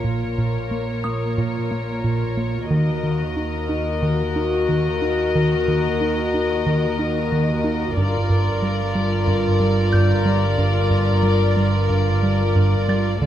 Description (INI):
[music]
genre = cinematic, suspense film score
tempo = 91 BPM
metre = 4/4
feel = straight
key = unclear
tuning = A4 = 438 Hz
[part]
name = warm studio violin section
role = melody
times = 0.0-13.3 s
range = Db5 to Eb5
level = -28 LUFS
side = left 3 dB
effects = none
[part]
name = warm studio violin section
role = second line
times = 0.0-13.3 s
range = A4 to Bb4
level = -27 LUFS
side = left 6 dB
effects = none
[part]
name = dark studio viola section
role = accompaniment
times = 0.0-13.3 s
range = F4 to Gb4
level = -26 LUFS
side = left 1 dB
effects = none
[part]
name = rubbery square bass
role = riff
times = 0.0-13.3 s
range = G2 to Eb4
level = -23 LUFS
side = right 1 dB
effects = none
[part]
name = dark chamber double bass section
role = bass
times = 0.0-13.3 s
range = G1 to Eb2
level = -25 LUFS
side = right 2 dB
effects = none
[part]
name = warm studio cello section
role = bass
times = 0.0-13.3 s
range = D2 to Bb2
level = -26 LUFS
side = right 2 dB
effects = none
[part]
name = music box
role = texture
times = 1.0-3.0, 9.9-13.3 s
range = Eb6 to A6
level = -32 LUFS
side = right 1 dB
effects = none
[sound]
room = moderate scoring stage reverb, RT60 1.9 s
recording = none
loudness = -18 LUFS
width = side -11 dB against mid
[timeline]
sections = 0.0-13.3 A section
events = none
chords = 0.0 Bbm; 2.7 Ebm; 8.0 Gm7